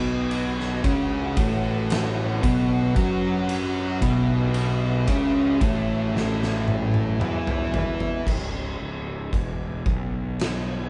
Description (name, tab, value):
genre	stoner and doom metal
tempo	57 BPM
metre	4/4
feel	straight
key	unclear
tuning	A4 = 440 Hz
part	breathy large flute ensemble	sustained chords	0.0-8.2 s	F#4 to F#5	-37 LUFS	equal	none
part	thick fuzz guitar	riff	0.0-8.3 s	A2 to F#4	-30 LUFS	equal	distortion
part	thick fuzz guitar	riff	0.0-8.2 s	A2 to F#4	-28 LUFS	equal	distortion
part	fuzz picked electric bass	bass	0.0-10.9 s	C#1 to F#2	-31 LUFS	equal	overdrive
part	oversized low-tuned drum kit	drums	0.3-10.6 s	crash cymbal, kick drum, ride cymbal, snare drum, toms	-29 LUFS	equal	none
room	light reverb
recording	band playing live in one room, nothing above 10.6 kHz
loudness	-24 LUFS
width	mono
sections	0.0-8.3 A section; 8.3-10.9 B section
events	drum fill 6.1-8.3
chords	0.0 B5; 8.3 C#m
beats	0.84 1.90 2.96 | 4.02 5.08 6.14 7.20 | 8.26 9.32 10.38